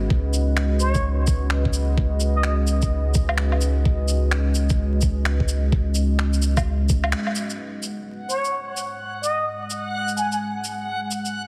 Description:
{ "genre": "future garage", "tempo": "128 BPM", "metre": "4/4", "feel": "swing 62% on 16ths", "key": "G# minor", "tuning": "A4 = 440 Hz", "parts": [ { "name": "deep dark ambient pad", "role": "sustained chords", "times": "0.0-11.5 s", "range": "G#3 to D#5", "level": "-31 LUFS", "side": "equal", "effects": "chorus, built-in reverb, vintage 12-bit sampler grit, sidechain pumping" }, { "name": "warm sub bass", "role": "bass", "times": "0.0-7.1 s", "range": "C#2", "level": "-23 LUFS", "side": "equal", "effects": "sidechain pumping" }, { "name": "electronic kick drum", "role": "drums", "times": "0.1-7.0 s", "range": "none", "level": "-24 LUFS", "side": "equal", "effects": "studio ambience" }, { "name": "electronic shaker, finger snaps and woodblock", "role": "drums", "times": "0.3-11.3 s", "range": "none", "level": "-30 LUFS", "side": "equal", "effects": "studio ambience" }, { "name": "trumpet with plunger mute", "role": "melody", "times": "0.8-2.5, 8.3-10.4 s", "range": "C#5 to G#5", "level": "-30 LUFS", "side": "equal", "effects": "delay" }, { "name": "backwards swelling texture", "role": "texture", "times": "8.2-11.5 s", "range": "F#5", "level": "-33 LUFS", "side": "equal", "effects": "built-in reverb" } ], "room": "light reverb", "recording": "heavily compressed radio sound, multiband compression, vinyl crackle", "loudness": "-22 LUFS", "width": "mono", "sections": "0.0-7.6 A section; 7.6-11.5 B section", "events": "break 7.1-7.6; band accent 7.1", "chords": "0.1 C#sus4; 7.6 G#m7" }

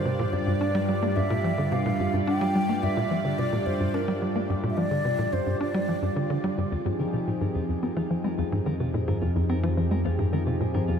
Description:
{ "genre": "ambient, sequencer-driven space music", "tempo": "108 BPM", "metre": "4/4", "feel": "straight", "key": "G dorian, F minor from 6.7 s", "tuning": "A4 = 440 Hz", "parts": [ { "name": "breathy mellow concert flute", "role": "melody", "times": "0.0-6.1 s", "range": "Bb4 to G5", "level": "-31 LUFS", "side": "equal", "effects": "shimmer reverb, ping-pong delay" }, { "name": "lush unison pad", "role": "sustained chords", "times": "0.0-11.0 s", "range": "F3 to D5", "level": "-30 LUFS", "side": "right 1 dB", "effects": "chorus, shimmer reverb" }, { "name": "tight sequencer bass", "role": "riff", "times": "0.0-11.0 s", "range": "F2 to D4", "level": "-27 LUFS", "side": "equal", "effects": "analog chorus, shimmer reverb, ping-pong delay" }, { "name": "analog drone", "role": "bass", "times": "0.0-11.0 s", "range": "F2 to G2", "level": "-30 LUFS", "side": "equal", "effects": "chorus, phaser" }, { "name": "clean electric guitar", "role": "arpeggios", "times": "6.7-11.0 s", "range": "F4 to Bb4", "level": "-44 LUFS", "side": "right 1 dB", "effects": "auto-pan, shimmer reverb, ping-pong delay" } ], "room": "wet echo chamber reverb, RT60 2.5 s", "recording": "echo-heavy mix", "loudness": "-24 LUFS", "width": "side -7 dB against mid", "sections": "0.0-6.7 A section; 6.7-11.0 B section", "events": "fade-in on clean electric guitar 6.7-11.0", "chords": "0.0 Gm7; 6.7 Fm7" }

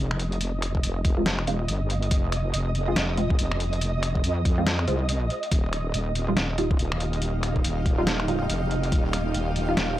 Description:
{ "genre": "deep dubstep", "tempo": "141 BPM", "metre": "4/4", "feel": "swing 60% on 16ths, half-time", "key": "unclear", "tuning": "A4 = 440 Hz", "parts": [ { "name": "wobble bass", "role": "bass", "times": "0.0-10.0 s", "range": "Eb1 to F2", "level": "-26 LUFS", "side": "equal", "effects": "chorus, tube saturation" }, { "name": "flickering grainy texture", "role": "texture", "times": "0.0-10.0 s", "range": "Eb5", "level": "-34 LUFS", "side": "right 4 dB", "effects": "built-in reverb" }, { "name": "trip hop sampler-style drum kit", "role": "drums", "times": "0.1-9.9 s", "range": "finger snaps, hi-hat, snare drum", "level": "-29 LUFS", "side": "equal", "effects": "studio ambience" }, { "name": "electronic kick drum", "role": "drums", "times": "0.7-9.0 s", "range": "none", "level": "-24 LUFS", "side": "equal", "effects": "overdrive, studio ambience" }, { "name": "filtered dub chord stab", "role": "stabs", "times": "1.2-9.8 s", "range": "G3 to F4", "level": "-30 LUFS", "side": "right 1 dB", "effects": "phaser, lush chorus, dub echo" }, { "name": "granular cloud pad", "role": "sustained chords", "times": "6.5-10.0 s", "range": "Eb4 to F5", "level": "-32 LUFS", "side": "right 1 dB", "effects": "built-in reverb" } ], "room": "little or no reverb", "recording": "dry, gritty hardware recording, transformer saturation", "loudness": "-23 LUFS", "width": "side -14 dB against mid", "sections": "0.0-10.0 A section", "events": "none", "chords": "0.0 F5; 5.5 Ebadd9" }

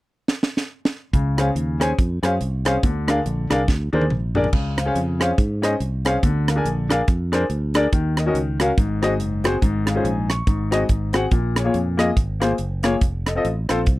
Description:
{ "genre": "uptempo gospel", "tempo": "141 BPM", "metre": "4/4", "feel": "swing 59% on 8ths", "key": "Db major", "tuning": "A4 = 440 Hz", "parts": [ { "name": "crisp fusion drum kit", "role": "drums", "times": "0.3-14.0 s", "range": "crash cymbal, hi-hat, kick drum, rim click, snare drum, toms", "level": "-21 LUFS", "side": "right 1 dB", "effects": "none" }, { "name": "clear concert grand piano", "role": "accompaniment", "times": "1.1-13.8 s", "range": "Ab2 to Db6", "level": "-21 LUFS", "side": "left 2 dB", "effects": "none" }, { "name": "fingered electric bass", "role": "bass", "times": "1.1-14.0 s", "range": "F1 to Ab2", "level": "-24 LUFS", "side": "equal", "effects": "none" } ], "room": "little or no reverb", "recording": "dry, close 1970s-style studio recording", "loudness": "-18 LUFS", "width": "side -18 dB against mid", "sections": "0.0-1.1 A section; 1.1-4.5 B section; 4.5-14.0 C section", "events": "drum fill 0.3-1.1, 3.7-4.5", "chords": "0.0 N.C.; 1.1 Dbmaj7; 2.8 Bb7; 4.5 Dbmaj7; 6.2 Bb7; 7.9 Ebm7; 8.8 Ab7; 9.6 Db/Ab; 10.5 Ab7; 11.3 Bbm7; 13.0 F7" }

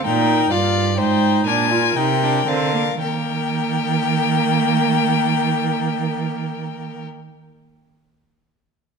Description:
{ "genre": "classical, baroque-style fugue for string quartet", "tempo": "37-45 BPM (dotted quarters)", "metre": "6/8", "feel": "straight", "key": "Eb major", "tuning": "A4 = 441 Hz", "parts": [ { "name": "rich violin", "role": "melody", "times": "0.0-7.0 s", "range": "F5 to Ab5", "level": "-22 LUFS", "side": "left 13 dB", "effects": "none" }, { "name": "rich violin", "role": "second line", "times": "0.0-7.0 s", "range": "Bb4 to D5", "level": "-27 LUFS", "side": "left 5 dB", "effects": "none" }, { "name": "warm viola", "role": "accompaniment", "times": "0.0-7.0 s", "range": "Bb3 to F4", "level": "-22 LUFS", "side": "right 5 dB", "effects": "none" }, { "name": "rich cello", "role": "bass", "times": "0.1-7.0 s", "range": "G2 to Eb3", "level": "-22 LUFS", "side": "right 6 dB", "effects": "none" } ], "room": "moderate recital hall reverb, RT60 1.7 s", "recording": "none", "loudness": "-16 LUFS", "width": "side -5 dB against mid", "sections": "0.0-3.0 A section; 3.0-6.3 B section", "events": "slowing down 0.0-3.0", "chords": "0.1 Bb7sus4; 1.5 Bb7; 3.0 Eb" }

